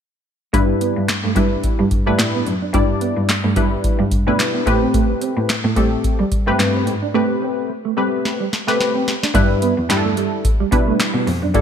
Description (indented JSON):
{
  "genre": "early-eighties boogie funk",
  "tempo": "109 BPM",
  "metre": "4/4",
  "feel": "swing 56% on 16ths",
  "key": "unclear",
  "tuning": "A4 = 440 Hz",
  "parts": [
    { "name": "funky polysynth comp", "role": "accompaniment", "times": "0.5-11.6 s", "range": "G3 to D5", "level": "-20 LUFS", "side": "left 1 dB", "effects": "chorus" },
    { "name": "mellow electric guitar", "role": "riff", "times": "0.5-11.6 s", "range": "G3 to D4", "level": "-24 LUFS", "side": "right 8 dB", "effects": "lush chorus" },
    { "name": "rich cello", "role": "bass", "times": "0.5-11.6 s", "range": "E2 to A3", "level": "-21 LUFS", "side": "equal", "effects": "none" },
    { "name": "booming analog drum machine", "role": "drums", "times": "0.5-11.6 s", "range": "handclaps, hi-hat, kick drum, snare drum", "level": "-20 LUFS", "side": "equal", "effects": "gated reverb" }
  ],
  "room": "light reverb, digital ambience",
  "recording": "bright 1980s-style digital production",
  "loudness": "-16 LUFS",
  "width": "side -8 dB against mid",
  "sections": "0.5-9.3 A section; 9.3-11.6 B section",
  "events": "drum fill 8.2-9.3",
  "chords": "0.5 G6; 4.7 Am9; 9.3 G6",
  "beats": "| 0.54 1.09 1.64 2.19 | 2.74 3.29 3.84 4.39 | 4.94 5.49 6.04 6.59 | 7.14 7.70 8.24 8.80 | 9.35 9.90 10.45 11.00 | 11.55"
}